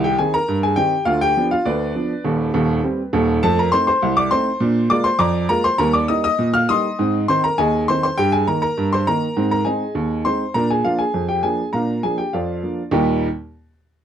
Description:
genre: ragtime piano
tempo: 101 BPM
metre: 2/4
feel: straight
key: Eb major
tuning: A4 = 442 Hz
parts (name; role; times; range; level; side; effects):
- warm upright piano; solo; 0.0-13.3 s; Eb1 to F6; -16 LUFS; equal; none
room: light reverb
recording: dry, close 1970s-style studio recording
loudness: -16 LUFS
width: side -9 dB against mid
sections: 0.0-12.9 A section; 12.9-14.0 B section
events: none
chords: 0.0 Cm; 1.1 Bdim/D; 2.2 Cm/Eb; 3.4 F7; 4.6 Bb7; 5.8 Eb; 7.0 Ab; 8.2 Eb/G; 9.4 Ab; 10.6 Bb7; 12.9 Eb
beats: 0.47 | 1.06 1.66 | 2.25 2.84 | 3.43 4.02 | 4.61 5.21 | 5.80 6.39 | 6.99 7.58 | 8.18 8.77 | 9.36 9.96 | 10.55 11.14 | 11.74 12.33 | 12.94

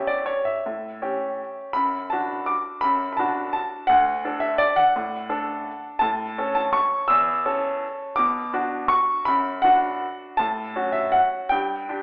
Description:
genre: classical, piano waltz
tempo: 154-183 BPM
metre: 3/4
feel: rubato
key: D major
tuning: A4 = 439 Hz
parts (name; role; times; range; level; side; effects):
- bright upright piano; solo; 0.0-12.0 s; D2 to E6; -20 LUFS; equal; none
room: wet large studio reverb, RT60 1.3 s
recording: heard from further back in the room, telephone sound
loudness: -20 LUFS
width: side -29 dB against mid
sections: 0.0-12.0 A section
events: none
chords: 0.0 A7/E; 1.8 D/F#; 3.9 D; 6.0 A; 8.2 Bm; 10.4 F#m/A; 11.5 G5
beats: 0.30 | 0.67 1.03 1.40 | 1.76 2.13 2.49 | 2.84 3.20 3.56 | 3.91 4.25 4.61 | 4.96 5.30 5.67 | 6.02 6.39 6.75 | 7.10 7.45 7.82 | 8.18 8.54 8.91 | 9.28 9.64 10.02 | 10.40 10.76 11.15 | 11.52 11.89

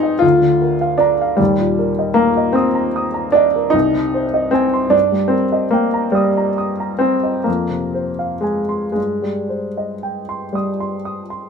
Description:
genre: classical, romantic nocturne for solo piano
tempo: 36-52 BPM (dotted quarters)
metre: 9/8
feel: rubato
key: unclear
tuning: A4 = 440 Hz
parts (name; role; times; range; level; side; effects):
- warm baby grand piano; solo; 0.0-11.5 s; C2 to Eb6; -15 LUFS; equal; none
room: light reverb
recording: minimal, uncompressed stereo recording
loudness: -15 LUFS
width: side -6 dB against mid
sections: 0.0-11.5 A section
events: none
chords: 0.2 Bb/D; 1.4 Eb; 3.7 Ab/C; 4.9 Eb/G; 7.5 Fm; 9.0 Cm/G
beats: 0.23 | 1.40 2.55 3.74 | 4.94 6.16 7.47 | 8.97 10.55

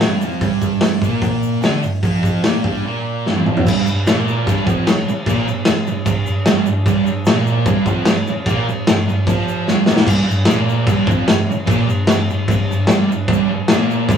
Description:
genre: garage rock duo or trio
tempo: 149 BPM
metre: 4/4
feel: straight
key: G minor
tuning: A4 = 440 Hz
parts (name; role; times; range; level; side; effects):
- thick fuzz guitar; riff; 0.0-14.2 s; F2 to F4; -17 LUFS; right 2 dB; distortion
- crunchy breakbeat drum kit; drums; 0.0-14.2 s; crash cymbal, hi-hat, kick drum, snare drum, toms; -17 LUFS; left 1 dB; none
- egg shaker; percussion; 0.0-14.2 s; none; -42 LUFS; right 1 dB; none
room: moderate booth ambience, RT60 0.3 s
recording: rough rehearsal-room recording, studio reverb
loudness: -14 LUFS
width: side -8 dB against mid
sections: 0.0-3.7 A section; 3.7-10.1 B section; 10.1-14.2 B section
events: drum fill 3.3-3.7, 9.7-10.1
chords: 0.0 Gm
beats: 0.03 | 0.43 0.83 1.24 1.64 | 2.04 2.44 2.85 3.25 | 3.65 4.06 4.46 4.86 | 5.26 5.66 6.07 6.47 | 6.87 7.27 7.67 8.07 | 8.48 8.88 9.28 9.68 | 10.08 10.48 10.88 11.29 | 11.69 12.09 12.49 12.89 | 13.29 13.69 14.09

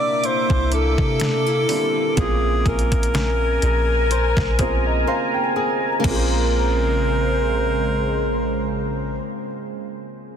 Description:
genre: contemporary R&B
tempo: 62 BPM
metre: 4/4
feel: swing 54% on 16ths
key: Bb dorian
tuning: A4 = 440 Hz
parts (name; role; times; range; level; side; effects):
- breathy alto saxophone; melody; 0.0-9.2 s; Ab4 to D5; -24 LUFS; equal; digital delay
- warm baby grand piano; accompaniment; 0.0-10.4 s; Db3 to Ab5; -28 LUFS; right 7 dB; none
- deep dark ambient pad; sustained chords; 0.0-9.2 s; Db3 to D6; -24 LUFS; equal; chorus, built-in reverb
- flamenco guitar; arpeggios; 0.0-9.7 s; C3 to C5; -29 LUFS; left 8 dB; digital delay
- detuned 8-bit digital drum machine; drums; 0.2-6.3 s; crash cymbal, hi-hat, kick drum, snare drum; -23 LUFS; equal; none
- soft 808-style bass; bass; 0.5-9.2 s; Bb1 to C3; -22 LUFS; equal; none
room: small room ambience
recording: dense, heavily limited modern master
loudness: -18 LUFS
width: side -8 dB against mid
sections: 0.0-6.0 A section; 6.0-9.9 B section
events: grand piano fill 4.1-6.0; drums muted 5.1-6.0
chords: 0.0 C9; 2.2 Bbm9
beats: 0.24 1.20 | 2.17 3.14 4.11 5.08 | 6.04 7.01 7.98 8.95

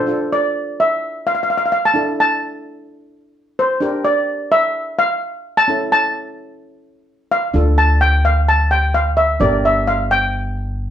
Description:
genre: calypso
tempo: 129 BPM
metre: 4/4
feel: swing 53% on 16ths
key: D minor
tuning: A4 = 438 Hz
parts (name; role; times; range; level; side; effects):
- steel pan; melody; 0.0-10.9 s; C5 to A5; -16 LUFS; equal; none
- steel pan; accompaniment; 0.0-10.9 s; C#4 to Bb4; -24 LUFS; equal; none
- upright bass; bass; 7.5-10.9 s; G1 to D2; -17 LUFS; equal; none
room: wet studio reverb, RT60 0.6 s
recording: heard from further back in the room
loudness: -14 LUFS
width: side -10 dB against mid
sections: 0.1-10.9 A section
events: none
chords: 0.1 Dmadd9; 2.0 Asus4; 3.8 Gm; 5.7 A; 7.5 Dm; 9.4 Gm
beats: | 0.09 0.55 1.02 1.49 | 1.95 2.42 2.89 3.35 | 3.82 4.29 4.75 5.22 | 5.68 6.15 6.62 7.08 | 7.55 8.02 8.48 8.95 | 9.41 9.88 10.34 10.81

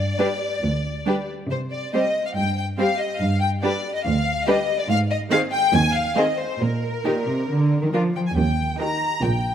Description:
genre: quick classical-period movement for string orchestra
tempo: 140 BPM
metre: 4/4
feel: straight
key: Eb major from 4.9 s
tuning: A4 = 440 Hz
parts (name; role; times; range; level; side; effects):
- rich symphonic violin section; melody; 0.0-9.5 s; Bb4 to Bb5; -24 LUFS; left 3 dB; none
- rich symphonic cello section; bass; 0.0-9.5 s; D2 to F3; -23 LUFS; right 2 dB; none
- rich symphonic violin section; second line; 0.2-9.1 s; F4 to C5; -27 LUFS; left 1 dB; none
- clear symphonic viola section; accompaniment; 0.2-9.1 s; Eb3 to Eb4; -28 LUFS; right 2 dB; none
- clear symphonic double bass section; bass; 8.4-9.5 s; Bb1 to Eb2; -24 LUFS; right 3 dB; none
room: moderate concert hall reverb, RT60 1.8 s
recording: close, detailed microphones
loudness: -20 LUFS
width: side -9 dB against mid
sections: 0.0-8.4 A section; 8.4-9.5 B section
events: none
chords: 0.0 G5; 1.5 C5; 3.2 G7(no3); 4.9 Ab; 6.6 Eb5/Bb; 7.5 Bb/D; 8.4 Eb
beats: 0.19 0.63 1.07 | 1.51 1.94 2.36 2.79 | 3.21 3.63 4.05 4.47 | 4.89 5.31 5.74 6.17 | 6.61 7.05 7.50 7.94 | 8.38 8.81 9.24

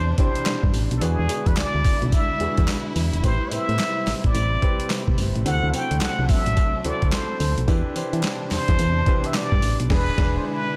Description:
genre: R&B, new jack swing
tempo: 108 BPM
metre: 4/4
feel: swing 63% on 16ths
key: A dorian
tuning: A4 = 440 Hz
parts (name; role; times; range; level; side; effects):
- trumpet with plunger mute; melody; 0.0-10.8 s; G#4 to G5; -29 LUFS; equal; slapback echo
- warm concert grand piano; accompaniment; 0.0-10.8 s; C4 to C5; -33 LUFS; equal; slapback echo
- warm studio string section; sustained chords; 0.0-10.8 s; B2 to E4; -33 LUFS; equal; none
- solid FM bass; bass; 0.0-10.4 s; E1 to E3; -26 LUFS; equal; none
- boom bap sampler-style drum kit; drums; 0.2-10.4 s; crash cymbal, handclaps, hi-hat, kick drum, snare drum, tambourine; -25 LUFS; equal; none
- group handclap; percussion; 0.5-9.5 s; none; barely audible; none; none
room: light reverb, studio reverb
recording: none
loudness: -22 LUFS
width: mono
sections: 0.0-10.8 A section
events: band accent 9.9-10.8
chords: 0.0 Cmaj9/E; 1.0 E7; 3.2 Am7; 5.5 D7; 7.7 Cmaj9/E; 9.9 E7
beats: 0.46 | 1.01 1.57 2.12 2.68 | 3.23 3.79 4.35 4.90 | 5.46 6.01 6.57 7.12 | 7.68 8.23 8.79 9.35 | 9.90 10.46

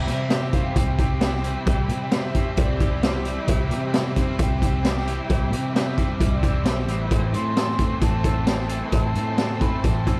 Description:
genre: rock, shoegaze and dream pop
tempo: 132 BPM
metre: 4/4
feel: straight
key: C major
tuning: A4 = 440 Hz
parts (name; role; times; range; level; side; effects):
- mellow hollow jazz flute; melody; 0.0-10.2 s; C5 to C6; -35 LUFS; equal; digital delay
- string machine, violins; sustained chords; 0.0-10.2 s; G4 to C6; -37 LUFS; equal; ensemble chorus
- biting overdriven guitar; riff; 0.0-10.2 s; A2 to E4; -33 LUFS; equal; analog chorus
- twangy electric guitar; riff; 0.0-10.2 s; A2 to A4; -35 LUFS; equal; reverse reverb
- vintage muted picked electric bass; bass; 0.0-10.2 s; A1 to C3; -29 LUFS; equal; none
- raw garage drum kit; drums; 0.1-10.2 s; hi-hat, kick drum, snare drum; -25 LUFS; equal; none
room: small room ambience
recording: dark, warm production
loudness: -23 LUFS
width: mono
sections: 0.0-10.2 A section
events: none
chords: 0.0 Cmaj7; 7.1 Am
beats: 0.30 0.76 1.21 | 1.67 2.12 2.57 3.03 | 3.48 3.94 4.39 4.84 | 5.30 5.75 6.20 6.66 | 7.11 7.56 8.02 8.47 | 8.93 9.38 9.84

